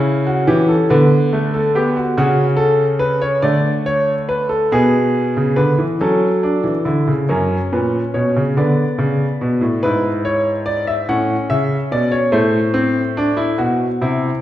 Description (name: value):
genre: classical, baroque-style 3-part fugue for grand piano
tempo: 47 BPM (dotted quarters)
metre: 6/8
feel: straight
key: unclear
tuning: A4 = 440 Hz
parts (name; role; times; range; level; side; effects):
- clear grand piano; solo; 0.0-14.4 s; F#2 to F#5; -14 LUFS; equal; none
room: wet recital hall reverb, RT60 1.3 s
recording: heard from further back in the room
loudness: -14 LUFS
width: side -13 dB against mid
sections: 0.0-7.3 A section; 7.3-14.4 B section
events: none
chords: 0.0 C#dim; 0.9 Bm/D; 2.2 F#m/C#; 3.4 D5; 4.7 G#dim/B; 6.0 F#m; 7.3 F#; 8.6 Bm; 9.8 E7/G#; 11.1 A; 12.3 F#dim/A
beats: 0.90 | 2.16 3.43 | 4.71 5.99 | 7.27 8.56 | 9.82 11.07 | 12.32 13.59